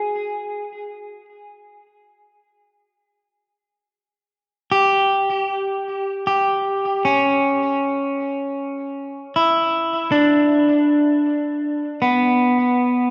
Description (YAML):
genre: ambient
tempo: 79 BPM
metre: 4/4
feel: straight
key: unclear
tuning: A4 = 440 Hz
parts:
  - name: electric guitar at the edge of break-up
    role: solo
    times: 0.0-13.1 s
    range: B3 to G#4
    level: -20 LUFS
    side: equal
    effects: tape echo
room: wet concert hall reverb, RT60 2.3 s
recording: dark, warm production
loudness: -19 LUFS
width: mono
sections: 0.0-13.1 A section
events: none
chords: 0.0 F#sus2; 0.9 N.C.; 7.0 C#m; 10.1 Bm